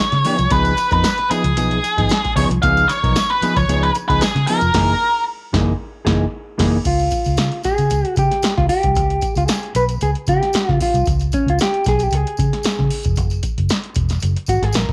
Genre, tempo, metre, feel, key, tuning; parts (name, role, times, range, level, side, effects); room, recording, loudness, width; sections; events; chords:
funk; 114 BPM; 4/4; straight; Db mixolydian; A4 = 440 Hz
octave-fuzz lead guitar; melody; 0.0-5.2 s; Ab4 to F5; -20 LUFS; equal; distortion
mellow electric guitar; accompaniment; 0.1-14.9 s; Fb3 to Cb5; -23 LUFS; equal; subtle chorus
vintage muted fingered electric bass; bass; 0.1-14.9 s; Fb1 to Db3; -22 LUFS; equal
electro analog drum machine; drums; 0.1-14.9 s; crash cymbal, hi-hat, kick drum, snare drum; -24 LUFS; equal
tambourine; percussion; 0.3-14.9 s; -37 LUFS; equal
light reverb; -18 LUFS; mono
0.0-6.9 A section; 6.9-14.9 B section
band accent 4.7-6.9; clean electric guitar solo 6.9-14.9
0.0 Db9; 4.7 Gb13; 6.9 Db; 13.2 Gb9